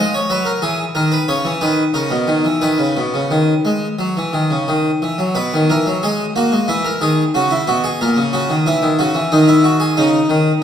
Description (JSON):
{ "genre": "classical, baroque-style two-part invention for harpsichord", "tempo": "91 BPM", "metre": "4/4", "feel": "straight", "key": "B major", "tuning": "A4 = 440 Hz", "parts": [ { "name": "harpsichord", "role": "solo", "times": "0.0-10.6 s", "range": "A#2 to D#5", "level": "-14 LUFS", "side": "equal", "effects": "none" } ], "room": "wet recital hall reverb, RT60 1.6 s", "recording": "recorded in a church or concert hall", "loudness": "-14 LUFS", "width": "side -9 dB against mid", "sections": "0.0-5.4 A section; 5.4-10.6 B section", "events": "none", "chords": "0.0 E; 1.3 C#m; 1.9 Bmaj9; 2.6 B; 5.4 B5; 6.7 C#m7; 8.0 F#7/A#; 9.3 C#madd9" }